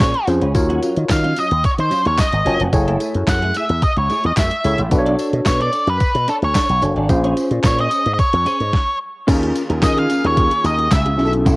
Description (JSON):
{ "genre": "early-eighties boogie funk", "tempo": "110 BPM", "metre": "4/4", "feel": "straight", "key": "unclear", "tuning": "A4 = 439 Hz", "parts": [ { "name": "octave-fuzz lead guitar", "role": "melody", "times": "0.0-11.3 s", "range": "A4 to Gb5", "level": "-19 LUFS", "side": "equal", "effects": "distortion, cassette tape" }, { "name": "clean electric guitar", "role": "riff", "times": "0.0-11.6 s", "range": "Gb3 to D5", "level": "-26 LUFS", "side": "right 2 dB", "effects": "ensemble chorus, cassette tape" }, { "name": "slap bass with an envelope filter", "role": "bass", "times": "0.0-11.6 s", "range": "F1 to Eb3", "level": "-19 LUFS", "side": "equal", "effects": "none" }, { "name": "detuned 8-bit digital drum machine", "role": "drums", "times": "0.0-11.6 s", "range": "crash cymbal, handclaps, hi-hat, kick drum, snare drum", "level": "-18 LUFS", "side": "equal", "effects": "overdrive, cassette tape" }, { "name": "tambourine", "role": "percussion", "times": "0.0-11.6 s", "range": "none", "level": "-35 LUFS", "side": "left 4 dB", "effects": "none" }, { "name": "tine electric piano", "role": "accompaniment", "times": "0.3-11.6 s", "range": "Db4 to Db5", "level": "-20 LUFS", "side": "left 1 dB", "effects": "medium stereo tremolo, cassette tape" }, { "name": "warm analog pad", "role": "sustained chords", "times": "9.3-11.6 s", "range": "Eb3 to Ab4", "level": "-29 LUFS", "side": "equal", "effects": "none" } ], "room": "light reverb", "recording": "home recording on cassette", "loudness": "-14 LUFS", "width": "side -24 dB against mid", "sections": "0.0-9.3 A section; 9.3-11.6 B section", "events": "stop 8.7-9.3", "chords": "0.0 Bbm9; 0.6 Ebm9; 2.7 Gbm9; 4.9 Bm9; 7.1 Bbm9; 9.3 Eb9sus4" }